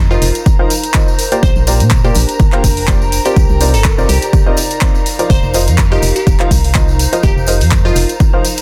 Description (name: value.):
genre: piano house.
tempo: 124 BPM.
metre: 4/4.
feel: swing 55% on 16ths.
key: unclear.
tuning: A4 = 440 Hz.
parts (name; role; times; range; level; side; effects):
dark chamber violin section; sustained chords; 0.0-8.6 s; Bb4 to Bb5; -26 LUFS; equal; sidechain pumping.
organ-like FM bass; bass; 0.0-8.1 s; Eb1 to Bb2; -16 LUFS; equal; sidechain pumping.
warbly tape-like pad; texture; 0.0-8.6 s; D4 to Bb5; -28 LUFS; equal; chorus, built-in reverb, phaser, sidechain pumping.
glassy wavetable pluck; melody; 0.1-8.0 s; F4 to C5; -25 LUFS; equal; chorus, dub echo.
clear upright piano; riff; 0.1-8.4 s; C3 to F5; -21 LUFS; equal; sidechain pumping, dub echo.
tambourine; percussion; 0.1-8.6 s; none; -31 LUFS; equal; none.
punchy analog drum machine; drums; 0.2-8.6 s; handclaps, hi-hat, tambourine; -22 LUFS; equal; overdrive, small room ambience.
electronic kick drum; drums; 0.5-8.3 s; none; -15 LUFS; equal; overdrive, small room ambience.
room: little or no reverb.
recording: dense, heavily limited modern master.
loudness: -12 LUFS.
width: mono.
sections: 0.0-8.6 A section.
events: none.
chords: 0.0 F7sus4; 1.2 Bb69; 3.4 Cm11; 5.3 F7sus4.